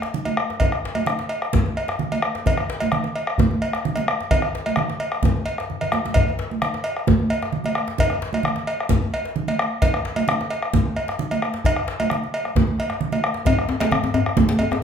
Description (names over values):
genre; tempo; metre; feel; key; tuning
west african traditional, West African drum ensemble; 131 BPM; 4/4; straight; none; none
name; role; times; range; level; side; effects
bombo; percussion; 0.0-14.8 s; none; -24 LUFS; equal; none
djembe; percussion; 0.0-14.8 s; none; -27 LUFS; left 5 dB; none
congas; percussion; 0.1-14.5 s; none; -24 LUFS; right 4 dB; none
cowbell; percussion; 0.3-14.7 s; none; -26 LUFS; equal; none
djembe; percussion; 13.5-14.8 s; none; -22 LUFS; left 4 dB; none
room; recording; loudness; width
wet large studio reverb, RT60 0.8 s; band playing live in one room; -19 LUFS; side -8 dB against mid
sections
0.0-13.5 A section; 13.5-14.8 B section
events
drum fill 5.7-6.2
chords
none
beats
0.14 | 0.60 1.07 1.53 2.00 | 2.46 2.92 3.39 3.85 | 4.31 4.77 5.23 5.69 | 6.15 6.61 7.07 7.53 | 7.99 8.45 8.90 9.36 | 9.82 10.28 10.73 11.19 | 11.64 12.10 12.55 13.00 | 13.46 13.91 14.36 14.81